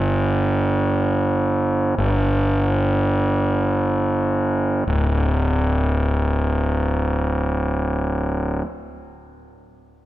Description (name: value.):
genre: rock.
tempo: free time.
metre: none.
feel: none.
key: unclear.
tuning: A4 = 435 Hz.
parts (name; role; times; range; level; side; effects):
fuzz fingered electric bass; bass; 0.0-8.6 s; D1 to G1; -18 LUFS; equal; overdrive.
room: moderate church reverb, RT60 3.5 s.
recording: recorded in a church or concert hall.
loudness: -18 LUFS.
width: side -15 dB against mid.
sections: 0.0-4.9 A section; 4.9-8.0 B section.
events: slowing down 0.0-4.9.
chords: none.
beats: free time.